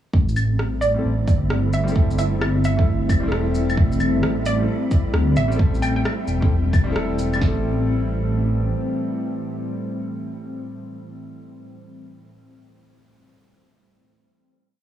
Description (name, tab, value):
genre	future garage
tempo	132 BPM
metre	4/4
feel	swing 65% on 16ths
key	A minor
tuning	A4 = 440 Hz
part	warbly tape-like pad	sustained chords	0.1-11.5 s	A2 to C4	-26 LUFS	left 1 dB	chorus, built-in reverb, sidechain pumping
part	dark detuned saw bass	bass	0.1-8.7 s	E1 to D2	-22 LUFS	right 1 dB	tube saturation, sidechain pumping
part	deep house drum kit	drums	0.1-7.6 s	kick drum, snare drum	-19 LUFS	equal	overdrive, studio reverb
part	wind-like tuned noise texture	texture	0.6-7.4 s	E4 to E5	-36 LUFS	equal	built-in reverb
part	electronic shaker, claves and rim click	drums	0.3-7.4 s	none	-30 LUFS	equal	overdrive, studio reverb
part	hollow square pluck	melody	0.8-6.0 s	D5 to G5	-28 LUFS	right 2 dB	wide subtle chorus, vintage 12-bit sampler grit, tape echo
part	warm upright piano	accompaniment	0.9-11.6 s	G3 to A4	-30 LUFS	left 2 dB	sidechain pumping, analog delay
room	little or no reverb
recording	cassette tape, small room ambience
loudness	-18 LUFS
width	side -11 dB against mid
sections	0.1-7.4 groove; 7.4-11.1 final chord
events	none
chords	0.1 Am7